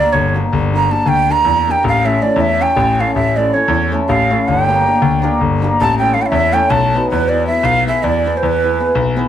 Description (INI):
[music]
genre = balkan folk, Balkan wedding band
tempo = 319 BPM (eighths)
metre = 7/8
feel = straight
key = A phrygian dominant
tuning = A4 = 442 Hz
[part]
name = breathy ney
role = melody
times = 0.0-9.0 s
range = B4 to Bb5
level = -15 LUFS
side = right 2 dB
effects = none
[part]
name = cimbalom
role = accompaniment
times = 0.0-9.3 s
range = A3 to B4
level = -19 LUFS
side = left 1 dB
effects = none
[part]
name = clear grand piano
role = bass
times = 0.1-9.2 s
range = G1 to E2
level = -17 LUFS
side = left 2 dB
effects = none
[sound]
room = light reverb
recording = none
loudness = -12 LUFS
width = side -10 dB against mid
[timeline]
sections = 0.0-7.1 A section; 7.1-9.3 B section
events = ney solo 0.0-7.1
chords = 0.0 Gm; 1.9 A; 4.5 Gm; 5.8 A; 6.7 B7; 7.1 E